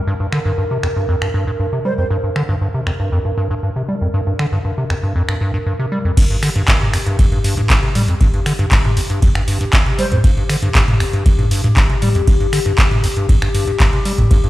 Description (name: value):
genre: acid house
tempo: 118 BPM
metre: 4/4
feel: straight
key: G minor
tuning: A4 = 440 Hz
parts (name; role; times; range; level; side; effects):
- warbly tape-like pad; sustained chords; 0.0-14.5 s; G4 to Bb4; -26 LUFS; left 2 dB; chorus, built-in reverb, sidechain pumping
- deep acid bass; riff; 0.1-14.5 s; F2 to G3; -18 LUFS; equal; overdrive, sidechain pumping
- booming analog drum machine; drums; 0.3-14.5 s; crash cymbal, finger snaps, handclaps, hi-hat, ride cymbal, toms; -19 LUFS; equal; none
- mellow hollow jazz flute; melody; 1.9-2.1, 10.0-10.2 s; C5; -26 LUFS; right 4 dB; digital delay
- electronic kick drum; drums; 6.2-14.4 s; none; -14 LUFS; equal; none
room: light reverb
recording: played on a big sound system in a bare room, stone room reverb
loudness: -14 LUFS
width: side -16 dB against mid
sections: 0.0-6.2 A section; 6.2-14.5 B section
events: drop 6.2-14.5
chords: 0.0 Gm; 6.2 N.C.